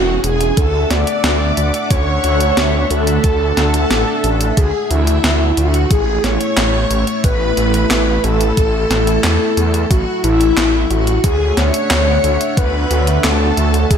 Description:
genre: synthwave.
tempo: 90 BPM.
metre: 4/4.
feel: straight.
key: unclear.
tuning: A4 = 439 Hz.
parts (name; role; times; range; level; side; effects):
soft octave-layered synth lead; melody; 0.0-14.0 s; E4 to D5; -19 LUFS; left 1 dB; chorus, phaser, ping-pong delay.
string machine, violins; second line; 0.0-14.0 s; E4 to D5; -22 LUFS; left 1 dB; ensemble chorus.
chorused pulse-width pad; sustained chords; 0.0-14.0 s; A3 to F#5; -21 LUFS; equal; sidechain pumping.
wide detuned saw bass; bass; 0.0-14.0 s; E1 to E2; -17 LUFS; equal; chorus, sidechain pumping.
clean 12-bit digital drum machine; drums; 0.2-14.0 s; handclaps, hi-hat, snare drum; -20 LUFS; equal; overdrive, gated reverb.
electronic kick drum; drums; 0.6-14.0 s; none; -15 LUFS; equal; overdrive.
room: light reverb, digital ambience.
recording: none.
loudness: -12 LUFS.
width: side -7 dB against mid.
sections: 0.0-14.0 A section.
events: none.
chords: 0.0 E6; 0.6 Dmaj7; 5.9 A; 11.2 Dmaj7.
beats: | 0.57 1.24 1.91 2.57 | 3.24 3.91 4.57 5.24 | 5.91 6.57 7.24 7.91 | 8.57 9.24 9.91 10.57 | 11.24 11.91 12.57 13.24 | 13.91.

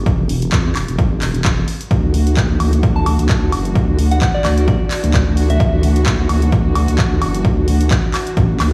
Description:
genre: bass house.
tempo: 130 BPM.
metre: 4/4.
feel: swing 56% on 16ths.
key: unclear.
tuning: A4 = 440 Hz.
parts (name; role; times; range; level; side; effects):
vowel-sweep wobble bass; bass; 0.0-8.7 s; E1 to E2; -18 LUFS; equal; chorus, overdrive, sidechain pumping.
electronic kick drum; drums; 0.1-8.5 s; none; -20 LUFS; equal; overdrive, small room ambience.
house drum kit; drums; 0.1-8.7 s; handclaps, hi-hat, woodblock; -26 LUFS; equal; small room ambience.
muted chamber string section; sustained chords; 1.9-8.7 s; E3 to F#4; -29 LUFS; equal; sidechain pumping.
soft synth bell; melody; 3.0-5.7 s; D5 to A5; -27 LUFS; equal; chorus, phaser, digital delay.
room: little or no reverb.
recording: played on a big sound system in a bare room, stone room reverb.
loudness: -16 LUFS.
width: mono.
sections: 0.0-8.7 A section.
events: none.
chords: 0.0 N.C.; 1.9 Dadd9.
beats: | 0.06 0.52 0.98 1.45 | 1.91 2.37 2.83 3.29 | 3.75 4.22 4.68 5.14 | 5.60 6.06 6.52 6.99 | 7.45 7.91 8.37.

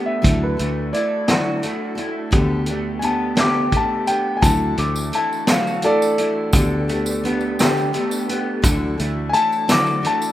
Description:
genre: folk rock and heartland rock.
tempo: 57 BPM (dotted quarters).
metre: 6/8.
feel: straight.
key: D major.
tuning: A4 = 440 Hz.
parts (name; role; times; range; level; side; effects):
warm concert grand piano; melody; 0.0-10.3 s; A4 to D6; -21 LUFS; left 1 dB; none.
picked steel-string acoustic guitar; accompaniment; 0.0-10.3 s; D3 to A4; -25 LUFS; left 2 dB; none.
tonewheel organ; sustained chords; 0.0-10.3 s; E3 to B4; -33 LUFS; equal; none.
electric guitar through a small old amp; riff; 0.0-10.3 s; D3 to G4; -26 LUFS; right 2 dB; analog chorus.
fingered electric bass; bass; 0.2-9.3 s; D2; -23 LUFS; equal; none.
vintage drum kit; drums; 0.2-10.2 s; hi-hat, kick drum, snare drum; -20 LUFS; equal; none.
tambourine; percussion; 4.4-10.3 s; none; -32 LUFS; right 4 dB; none.
room: small room ambience.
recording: rough home demo mix.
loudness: -17 LUFS.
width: side -13 dB against mid.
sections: 0.0-10.3 A section.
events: grand piano solo 0.0-10.3.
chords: 0.3 Dadd9; 2.3 Gadd9/D; 4.4 Dadd9; 6.5 Gadd9/D; 8.6 Dadd9.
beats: | 0.26 1.30 | 2.35 3.40 | 4.44 5.49 | 6.54 7.59 | 8.64 9.69.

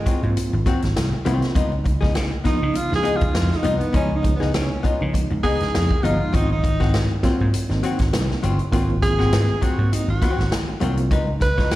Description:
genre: funk.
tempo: 100 BPM.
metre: 4/4.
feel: swing 56% on 16ths.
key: Ab mixolydian.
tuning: A4 = 437 Hz.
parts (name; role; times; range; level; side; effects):
breathy tenor saxophone; melody; 0.0-11.8 s; Ab3 to Cb5; -25 LUFS; right 2 dB; slapback echo.
archtop guitar, miked and amplified; accompaniment; 0.1-11.8 s; Gb3 to Db5; -26 LUFS; left 5 dB; slapback echo.
vintage slap bass; bass; 0.1-11.8 s; G1 to Db3; -22 LUFS; equal; none.
swinging big-band drum kit; drums; 0.1-11.8 s; hi-hat, kick drum, snare drum; -23 LUFS; equal; none.
reed electric piano; stabs; 0.2-11.1 s; F3 to Gb4; -27 LUFS; right 2 dB; overdrive, fast tremolo, slapback echo.
room: small room ambience.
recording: live gig heard through the venue's PA, recital hall reverb.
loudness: -18 LUFS.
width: side -16 dB against mid.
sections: 0.0-11.8 A section.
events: tenor saxophone solo 0.0-11.8.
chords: 0.0 Ab13; 1.6 Db9; 6.3 Ab13; 11.1 Db9.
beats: 0.36 0.96 | 1.56 2.15 2.75 3.35 | 3.95 4.54 5.14 5.74 | 6.34 6.93 7.53 8.13 | 8.72 9.32 9.92 10.51 | 11.11 11.71.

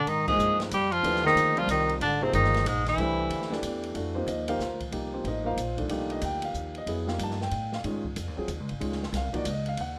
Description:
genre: modal jazz.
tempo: 186 BPM.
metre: 3/4.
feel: swing 63% on 8ths.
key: F mixolydian from 4.0 s.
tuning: A4 = 439 Hz.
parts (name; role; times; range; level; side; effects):
clear tenor saxophone; melody; 0.0-3.6 s; Ab3 to Ab4; -28 LUFS; equal; none.
bright bass clarinet; second line; 0.0-3.6 s; Ab2 to Ab3; -32 LUFS; equal; none.
upright bass; bass; 0.0-10.0 s; G1 to A2; -36 LUFS; equal; none.
open jazz drum kit; drums; 0.1-9.9 s; crash cymbal, hi-hat, kick drum, ride cymbal, snare drum; -41 LUFS; equal; none.
warm concert grand piano; accompaniment; 0.3-10.0 s; Eb3 to A5; -34 LUFS; equal; none.
room: light reverb.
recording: none.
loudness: -28 LUFS.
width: mono.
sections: 0.0-4.0 A section; 4.0-10.0 B section.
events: band accent 0.2.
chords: 0.1 Abmaj9; 3.0 Cadd9; 4.0 F9sus4; 7.8 Ab7sus4.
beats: | 0.07 0.40 0.72 | 1.04 1.37 1.69 | 2.01 2.34 2.66 | 2.98 3.31 3.63 | 3.95 4.28 4.60 | 4.92 5.25 5.57 | 5.90 6.22 6.54 | 6.87 7.19 7.51 | 7.84 8.16 8.48 | 8.81 9.13 9.46 | 9.78.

